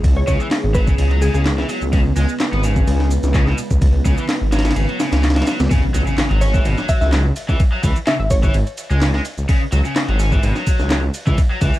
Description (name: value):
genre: breakbeat, breaks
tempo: 127 BPM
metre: 4/4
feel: swing 53% on 16ths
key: C# minor pentatonic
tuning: A4 = 439 Hz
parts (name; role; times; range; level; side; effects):
- warbly tape-like pad; sustained chords; 0.0-5.7 s; C#3 to B4; -27 LUFS; right 1 dB; chorus, built-in reverb, vintage 12-bit sampler grit, sidechain pumping
- detuned saw bass; bass; 0.0-11.7 s; G#1 to C#2; -17 LUFS; equal; tube saturation
- breakbeat sampler-style drum kit; drums; 0.0-11.7 s; kick drum, ride cymbal, snare drum; -18 LUFS; equal; none
- garage drum kit; drums; 0.0-11.8 s; handclaps, ride cymbal, shaker; -29 LUFS; equal; none
- glassy wavetable pluck; melody; 0.2-1.4, 6.4-8.5 s; G#4 to E5; -25 LUFS; equal; chorus, old record sound, ping-pong delay
- crunchy overdriven guitar; riff; 0.3-11.7 s; B2 to C#4; -24 LUFS; equal; vintage 12-bit sampler grit, ping-pong delay
- impact; sound effects; 5.7-7.6 s; none; -23 LUFS; equal; none
room: little or no reverb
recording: dark, warm production, vinyl crackle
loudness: -15 LUFS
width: side -15 dB against mid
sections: 0.0-5.7 A section; 5.7-11.8 B section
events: kick drops out 4.8-5.7; drop 5.7-11.8; impact 5.7-7.6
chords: 0.0 C#m7; 5.7 C#m